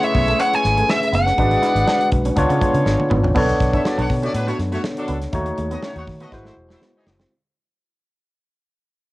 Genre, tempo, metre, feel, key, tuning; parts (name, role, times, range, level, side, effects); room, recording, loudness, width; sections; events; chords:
polished 1980s jazz-funk pop; 121 BPM; 4/4; swing 54% on 16ths; A4 = 442 Hz
nasal lead guitar with a parked wah; melody; 0.0-2.1 s; E5 to G#5; -19 LUFS; equal; overdrive, cassette tape
clear horn section; second line; 0.0-7.2 s; E3 to F#5; -28 LUFS; equal; cassette tape, plate reverb
barky tine electric piano; accompaniment; 0.0-7.3 s; G#3 to C#5; -22 LUFS; left 1 dB; lush chorus, cassette tape, plate reverb
modern studio drum kit; drums; 0.0-7.3 s; crash cymbal, hi-hat, kick drum, snare drum, toms; -24 LUFS; equal; cassette tape
clean electric guitar; riff; 0.1-7.3 s; G#3 to E4; -29 LUFS; right 4 dB; ensemble chorus, cassette tape
vintage muted fingered electric bass; bass; 0.1-7.2 s; E1 to D#3; -22 LUFS; equal
light reverb; home recording on cassette; -16 LUFS; side -18 dB against mid
0.0-3.4 A section; 3.4-7.3 B section
drum fill 2.9-3.4, 6.3-7.3; fade-out 3.4-7.3
0.0 Amaj9; 1.4 G#m7b5; 2.4 C#7b9; 3.4 Bm9; 5.3 D#m7b5; 6.3 G#7b13